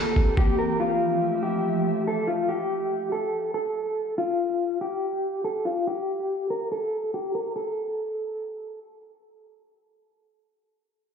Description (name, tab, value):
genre	hip hop, atmospheric cloud-rap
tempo	142 BPM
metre	4/4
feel	half-time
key	F major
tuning	A4 = 436 Hz
part	electric guitar at the edge of break-up	melody	0.0-8.8 s	F4 to Bb4	-26 LUFS	left 1 dB	tremolo, low-pass filter, digital delay
part	glassy FM pad	sustained chords	0.0-2.5 s	E3 to E5	-28 LUFS	right 1 dB	ensemble chorus, built-in reverb, sidechain pumping, low-pass filter
part	electronic kick drum	drums	0.2-0.5 s	none	-22 LUFS	equal	overdrive
room	light reverb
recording	played on a big sound system in a bare room, stone room reverb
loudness	-24 LUFS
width	side -6 dB against mid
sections	0.0-7.6 A section; 7.6-10.9 B section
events	break 0.0-0.8; filter sweep 0.0-7.6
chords	0.0 C7; 0.8 Fmaj9; 4.2 N.C.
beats	0.37 | 0.80 1.22 1.64 2.06 | 2.49 2.91 3.33 3.75 | 4.18 4.60 5.02 5.44 | 5.87 6.29 6.71 7.13 | 7.56 7.98 8.40